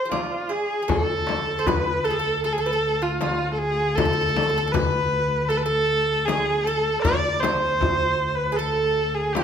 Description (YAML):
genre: Turkish makam ensemble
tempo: 78 BPM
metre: 4/4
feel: straight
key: D makam nikriz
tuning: A4 = 440 Hz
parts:
  - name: clear kamancheh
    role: melody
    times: 0.0-9.4 s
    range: F4 to D5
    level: -23 LUFS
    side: equal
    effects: none
  - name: Greek bouzouki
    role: second line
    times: 0.0-9.4 s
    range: F4 to D5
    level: -28 LUFS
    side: right 5 dB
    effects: none
  - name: darbuka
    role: percussion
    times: 0.1-9.4 s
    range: none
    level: -28 LUFS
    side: left 1 dB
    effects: none
  - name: frame drum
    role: percussion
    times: 0.1-9.4 s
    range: none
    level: -29 LUFS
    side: left 7 dB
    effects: none
  - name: dark double bass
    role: drone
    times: 0.9-9.4 s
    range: D2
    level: -30 LUFS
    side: left 1 dB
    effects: none
room: moderate recital hall reverb, RT60 1.6 s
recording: none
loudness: -20 LUFS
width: side -8 dB against mid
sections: 0.9-9.4 A section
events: none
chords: none